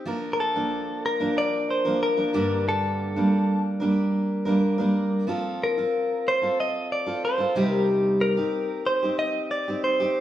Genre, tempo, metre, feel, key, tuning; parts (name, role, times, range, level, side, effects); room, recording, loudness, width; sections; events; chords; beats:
acoustic pop; 92 BPM; 4/4; straight; Bb major; A4 = 440 Hz
picked steel-string acoustic guitar; accompaniment; 0.0-10.2 s; G2 to Bb4; -24 LUFS; right 1 dB
direct-recorded clean electric guitar; melody; 0.3-10.2 s; A4 to Eb5; -24 LUFS; left 1 dB; warbly pitch drift
wet large studio reverb, RT60 1.2 s; band playing live in one room; -22 LUFS; side -12 dB against mid
0.0-10.2 A section
0.1 Bb; 2.3 Gm; 5.3 F; 7.6 Cm
| 0.06 0.71 1.36 2.02 | 2.67 3.32 3.98 4.63 | 5.28 5.93 6.58 7.23 | 7.88 8.54 9.19 9.84